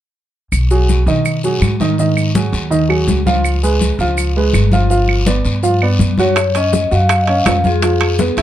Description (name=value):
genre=Afro-Cuban jazz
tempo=164 BPM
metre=4/4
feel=straight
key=unclear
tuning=A4 = 443 Hz
part: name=upright bass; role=bass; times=0.5-8.4 s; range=G1 to B2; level=-16 LUFS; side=equal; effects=none
part: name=claves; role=percussion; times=0.5-8.2 s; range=none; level=-23 LUFS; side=right 7 dB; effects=none
part: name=congas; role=percussion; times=0.5-8.4 s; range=none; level=-20 LUFS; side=left 3 dB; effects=none
part: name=guiro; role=percussion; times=0.5-8.4 s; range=none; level=-28 LUFS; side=left 4 dB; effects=none
part: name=maracas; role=percussion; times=0.5-8.4 s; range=none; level=-30 LUFS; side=left 7 dB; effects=none
part: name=warm baby grand piano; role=accompaniment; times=0.7-8.4 s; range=D#3 to F#5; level=-17 LUFS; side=right 2 dB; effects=none
part: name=vibraphone with medium mallets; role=melody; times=6.2-8.4 s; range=G#4 to E#5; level=-16 LUFS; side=left 2 dB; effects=none
part: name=bongos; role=percussion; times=6.4-8.4 s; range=none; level=-24 LUFS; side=left 5 dB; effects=none
part: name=timbales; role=percussion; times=6.4-8.4 s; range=none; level=-21 LUFS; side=right 6 dB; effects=none
room=light reverb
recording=dark, warm production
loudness=-12 LUFS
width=side -12 dB against mid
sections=0.5-6.4 A section; 6.4-8.4 B section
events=none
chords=0.5 B6; 2.0 G#5; 3.4 C#7; 4.9 G7; 6.4 F#5; 7.8 Fdim